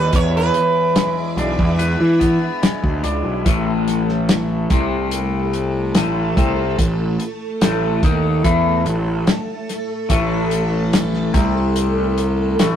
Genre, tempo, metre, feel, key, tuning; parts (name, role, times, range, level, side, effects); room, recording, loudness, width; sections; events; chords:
psychedelic rock; 72 BPM; 4/4; straight; A4 = 444 Hz
sitar; melody; 0.0-1.1 s; B4 to C#5; -20 LUFS; right 4 dB
string machine, full ensemble; sustained chords; 0.0-12.8 s; A3 to D#6; -26 LUFS; right 1 dB; phaser, ensemble chorus
twangy electric guitar; riff; 0.0-12.8 s; E2 to B4; -22 LUFS; left 4 dB; phaser
fuzz picked electric bass; bass; 0.0-12.8 s; A1 to E3; -19 LUFS; equal; overdrive
damped 70s drum kit; drums; 0.1-12.8 s; hi-hat, kick drum, snare drum; -18 LUFS; equal
light reverb; rough rehearsal-room recording, tube saturation; -16 LUFS; side -9 dB against mid
0.0-3.5 A section; 3.5-12.8 B section
sitar solo 0.0-3.5
0.1 E7; 3.5 A5